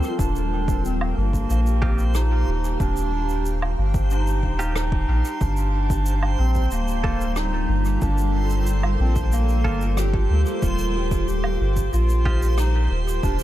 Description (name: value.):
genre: ambient dub.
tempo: 92 BPM.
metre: 4/4.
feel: straight.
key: unclear.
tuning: A4 = 437 Hz.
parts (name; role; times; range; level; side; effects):
dark clarinet; melody; 0.0-13.4 s; Bb3 to G4; -28 LUFS; right 1 dB; dub echo.
granular cloud pad; sustained chords; 0.0-13.4 s; G3 to Bb5; -30 LUFS; equal; built-in reverb.
shaker, woodblock and rim click; drums; 0.0-13.4 s; none; -34 LUFS; right 1 dB; dub echo.
backwards swelling texture; texture; 0.0-13.4 s; C5; -35 LUFS; right 1 dB; built-in reverb.
soft dub sub bass; bass; 0.2-13.4 s; D1 to D2; -21 LUFS; equal; tube saturation.
electronic kick drum; drums; 0.2-13.4 s; none; -26 LUFS; equal; none.
direct-recorded clean electric guitar; stabs; 1.8-12.5 s; Bb3 to A4; -36 LUFS; right 2 dB; dub echo.
room: studio reverb.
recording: echo-heavy mix.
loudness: -19 LUFS.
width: side -14 dB against mid.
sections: 0.0-13.4 A section.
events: none.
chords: 0.2 Ebadd9; 5.4 Gm7; 10.6 Ebadd9.